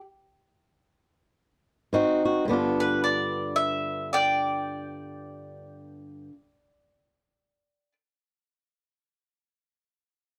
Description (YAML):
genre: acoustic country blues, solo or duo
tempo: 109-121 BPM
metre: 4/4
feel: swing 61% on 8ths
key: G mixolydian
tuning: A4 = 438 Hz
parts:
  - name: fingerpicked swing-style acoustic guitar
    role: accompaniment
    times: 1.9-6.4 s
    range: G2 to Gb4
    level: -29 LUFS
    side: equal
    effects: none
  - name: mandolin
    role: melody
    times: 2.8-7.9 s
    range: B4 to G5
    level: -29 LUFS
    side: equal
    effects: none
room: light reverb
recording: none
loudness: -26 LUFS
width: mono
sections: 0.0-2.5 A section; 2.5-6.9 B section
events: slowing down 0.0-2.5; stop 0.0-1.9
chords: 0.0 N.C.; 1.9 Ab7; 2.5 G7